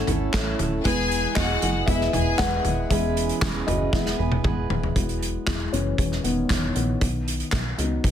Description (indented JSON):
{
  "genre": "piano-driven pop",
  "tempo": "117 BPM",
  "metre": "4/4",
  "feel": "straight",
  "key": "E major",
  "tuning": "A4 = 439 Hz",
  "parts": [
    { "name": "dark upright piano", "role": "accompaniment", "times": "0.0-8.1 s", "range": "D#3 to F#5", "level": "-27 LUFS", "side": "left 4 dB", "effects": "none" },
    { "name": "fingerpicked steel-string acoustic guitar", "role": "riff", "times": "0.0-5.5 s", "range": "E3 to B4", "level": "-28 LUFS", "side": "right 7 dB", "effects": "none" },
    { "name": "plucky analog bass", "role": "bass", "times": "0.0-8.1 s", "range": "D#1 to C#2", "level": "-27 LUFS", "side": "equal", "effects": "none" },
    { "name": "loose indie drum kit", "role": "drums", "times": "0.1-8.1 s", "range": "handclaps, hi-hat, kick drum, snare drum, toms", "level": "-26 LUFS", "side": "equal", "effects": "none" },
    { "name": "clear studio violin section", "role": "second line", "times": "0.9-2.6 s", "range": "E4 to G#5", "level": "-27 LUFS", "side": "left 4 dB", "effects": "ping-pong delay" }
  ],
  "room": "light reverb",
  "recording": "dense, heavily limited modern master",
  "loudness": "-21 LUFS",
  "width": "side -10 dB against mid",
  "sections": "0.0-5.0 A section; 5.0-8.1 B section",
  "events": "upright piano solo 0.0-5.0, 5.0-8.1; drum fill 3.9-5.0",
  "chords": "0.0 A; 0.8 E; 2.9 C#m7/E; 3.9 E; 5.0 Eadd9; 7.0 B",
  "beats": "0.34 | 0.85 1.36 1.88 2.39 | 2.90 3.42 3.93 4.45 | 4.96 5.47 5.99 6.50 | 7.01 7.53 8.04"
}